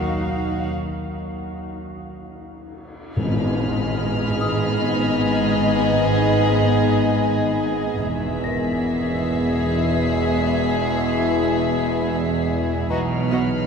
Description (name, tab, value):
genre	cinematic, suspense film score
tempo	free time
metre	none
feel	none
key	G# minor from 3.2 s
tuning	A4 = 441 Hz
part	dark studio violin section	melody	0.0-13.4 s	D#5 to E#5	-29 LUFS	left 1 dB	none
part	warm symphonic violin section	second line	0.0-13.4 s	F#4 to G#4	-29 LUFS	left 1 dB	none
part	dark symphonic viola section	accompaniment	0.0-13.4 s	B3 to D#4	-29 LUFS	equal	none
part	mellow French horn section	sustained chords	0.0-13.7 s	F#3 to F#4	-26 LUFS	left 5 dB	none
part	dark symphonic double bass section	bass	0.0-13.6 s	E1 to D#2	-27 LUFS	right 2 dB	none
part	rich symphonic cello section	bass	0.0-13.6 s	E2 to D#3	-27 LUFS	right 2 dB	none
part	celesta	texture	0.0-13.7 s	A#4 to A#6	-37 LUFS	left 2 dB	none
part	cymbal swell and tam-tam	percussion	0.7-6.4 s	none	-31 LUFS	left 2 dB	none
part	clear trombone section	sustained chords	3.2-13.7 s	G#2 to G#3	-28 LUFS	right 2 dB	none
part	timpani	percussion	3.2-4.3 s	G#2	-30 LUFS	equal	none
part	rich studio violin section	texture	3.2-13.7 s	B5 to B#6	-32 LUFS	left 1 dB	none
room	wet cathedral reverb, RT60 7.7 s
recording	heard from further back in the room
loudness	-18 LUFS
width	side -6 dB against mid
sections	0.0-3.2 A section; 3.2-13.7 B section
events	break 0.7-3.2; band accent 3.2-4.0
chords	0.0 D#madd9; 3.2 G#m; 8.0 E; 12.9 B